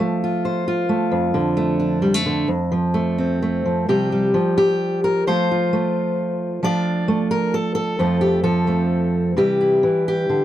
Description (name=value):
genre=folk, solo fingerstyle acoustic guitar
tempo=132 BPM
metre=3/4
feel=rubato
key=unclear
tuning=A4 = 440 Hz
part: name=fingerpicked steel-string acoustic guitar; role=solo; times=0.0-10.4 s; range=F2 to D5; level=-17 LUFS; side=equal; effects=none
room=light reverb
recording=dry, close 1970s-style studio recording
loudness=-17 LUFS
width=side -12 dB against mid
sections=0.0-3.9 A section; 3.9-10.4 B section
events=none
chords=0.0 F; 1.1 Dm/F; 2.5 F; 3.9 Csus4; 5.3 F; 6.6 Dm/F; 8.0 F; 9.4 C